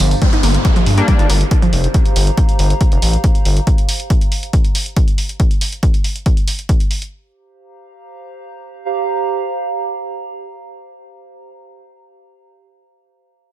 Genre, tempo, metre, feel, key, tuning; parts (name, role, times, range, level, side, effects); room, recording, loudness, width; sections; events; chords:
driving peak-time techno; 139 BPM; 4/4; straight; G minor; A4 = 440 Hz
gritty driven synth bass; bass; 0.0-3.6 s; F1 to G2; -14 LUFS; equal; sidechain pumping
punchy analog drum machine; drums; 0.0-7.1 s; hi-hat, ride cymbal, tambourine; -24 LUFS; right 1 dB; sidechain pumping on hats, sidechain pumping on perc, sidechain pumping on cymbals
warbly tape-like pad; texture; 0.0-11.3 s; G4 to Bb5; -24 LUFS; right 3 dB; chorus, built-in reverb, sidechain pumping
analog pluck; riff; 0.2-1.7 s; F3 to Eb4; -21 LUFS; right 2 dB; chorus, tube saturation, sidechain pumping, digital delay
electronic kick drum; drums; 0.2-6.8 s; -14 LUFS; equal
downlifter; sound effects; 0.2-3.7 s; -25 LUFS; equal
sync-sweep polysynth; stabs; 1.0-1.3 s; G3 to D4; -22 LUFS; left 3 dB; chorus, sidechain pumping, tape echo
digital ambience; -13 LUFS; side -14 dB against mid
0.2-7.1 A section; 7.1-10.6 B section
break 0.0; fade-out on ambient pad 0.2-5.4; filter sweep on synth arpeggio sound 0.2-1.9
0.2 Gm